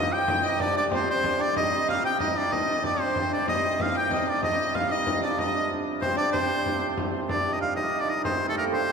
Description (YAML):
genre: medieval dance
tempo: 126 BPM (dotted quarters)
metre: 6/8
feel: straight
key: C minor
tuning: A4 = 441 Hz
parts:
  - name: edgy shawm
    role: melody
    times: 0.0-8.9 s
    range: A4 to G5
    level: -26 LUFS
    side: left 1 dB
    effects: none
  - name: hammered dulcimer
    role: second line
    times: 0.0-8.9 s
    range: A3 to G4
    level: -30 LUFS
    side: right 5 dB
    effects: none
  - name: warm fiddle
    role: second line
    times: 0.0-7.0 s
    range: C5 to G5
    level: -33 LUFS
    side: left 2 dB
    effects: none
  - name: hand-pumped harmonium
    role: drone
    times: 0.0-8.9 s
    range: C3 to G3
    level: -36 LUFS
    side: right 2 dB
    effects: none
  - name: frame drum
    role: percussion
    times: 0.3-8.9 s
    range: none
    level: -31 LUFS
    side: left 2 dB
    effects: none
room: wet church reverb, RT60 3.6 s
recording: recorded in a church or concert hall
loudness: -23 LUFS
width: side -6 dB against mid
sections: 0.0-7.3 A section; 7.3-8.9 B section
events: none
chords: none